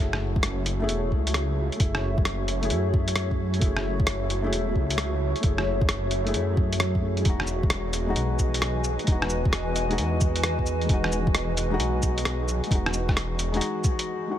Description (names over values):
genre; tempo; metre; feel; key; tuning
future garage; 132 BPM; 4/4; swing 66% on 16ths; F# dorian; A4 = 440 Hz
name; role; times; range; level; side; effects
felt-muted upright piano; accompaniment; 0.0-14.4 s; G#3 to G#4; -31 LUFS; left 3 dB; sidechain pumping, ping-pong delay
granular cloud pad; sustained chords; 0.0-14.0 s; E3 to G#5; -31 LUFS; right 1 dB; built-in reverb, sidechain pumping
swelling detuned saw bass; bass; 0.0-13.6 s; E1 to F#2; -28 LUFS; equal; sidechain pumping
lo-fi sampler-style drum kit; drums; 0.1-14.1 s; cabasa, hi-hat, rim click; -29 LUFS; equal; none
electronic kick drum; drums; 0.4-14.0 s; none; -24 LUFS; equal; overdrive
room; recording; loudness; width
little or no reverb; none; -23 LUFS; side -11 dB against mid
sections
0.0-14.4 A section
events
break 14.1-14.4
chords
0.0 F#m7; 7.3 Emaj7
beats
0.43 0.89 1.34 | 1.80 2.25 2.71 3.16 | 3.62 4.07 4.52 4.98 | 5.43 5.89 6.34 6.80 | 7.25 7.71 8.16 8.62 | 9.07 9.52 9.98 10.43 | 10.89 11.34 11.80 12.25 | 12.71 13.16 13.62 14.07